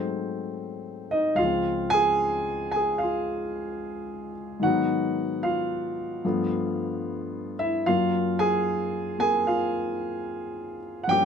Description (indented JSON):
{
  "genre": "solo jazz",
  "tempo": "74 BPM",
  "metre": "4/4",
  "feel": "swing 66% on 8ths",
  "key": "Db major",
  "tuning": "A4 = 440 Hz",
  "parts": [
    { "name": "warm concert grand piano", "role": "solo", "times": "0.0-11.2 s", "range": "Db2 to Ab5", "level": "-24 LUFS", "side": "equal", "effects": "none" }
  ],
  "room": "light reverb",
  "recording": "none",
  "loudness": "-24 LUFS",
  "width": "side -7 dB against mid",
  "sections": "0.0-1.4 A section; 1.4-11.2 B section",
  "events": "none",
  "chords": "0.0 Ab7b9; 1.4 Dbmaj7; 4.6 Abm7; 6.2 G9; 7.9 Gbmaj7"
}